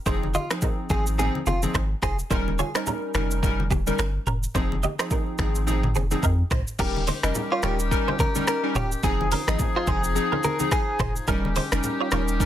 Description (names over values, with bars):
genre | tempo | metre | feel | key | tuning
afrobeats | 107 BPM | 4/4 | swing 58% on 16ths | F minor | A4 = 440 Hz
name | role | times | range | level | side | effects
warm analog keys | accompaniment | 0.1-12.5 s | F3 to Bb4 | -28 LUFS | equal | chorus, plate reverb
direct-recorded clean electric guitar | riff | 0.1-12.2 s | Bb3 to Eb5 | -30 LUFS | right 6 dB | ensemble chorus, digital delay
punchy sub bass | bass | 0.1-12.4 s | Eb1 to F2 | -26 LUFS | equal | none
afro-pop drum kit | drums | 0.1-12.5 s | crash cymbal, finger snaps, hi-hat, kick drum, rim click, shaker, toms | -27 LUFS | equal | soft clipping on snare
congas | percussion | 0.1-12.3 s | none | -32 LUFS | left 3 dB | none
direct-recorded clean electric guitar | melody | 0.3-2.2, 6.8-11.1 s | Eb4 to Bb4 | -29 LUFS | equal | digital delay, plate reverb
clear woodwind section | sustained chords | 6.8-12.5 s | Eb3 to Ab4 | -31 LUFS | left 2 dB | none
room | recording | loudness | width
little or no reverb | dense, heavily limited modern master | -22 LUFS | side -11 dB against mid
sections
0.0-6.8 A section; 6.8-12.5 B section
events
none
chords
0.1 Fm7; 2.3 Eb7; 4.5 Fm7; 6.8 Eb7; 9.0 Fm7; 11.3 Eb7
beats
| 0.06 0.62 1.18 1.75 | 2.31 2.87 3.43 3.99 | 4.55 5.11 5.67 6.23 | 6.79 7.35 7.91 8.47 | 9.03 9.60 10.16 10.72 | 11.28 11.84 12.40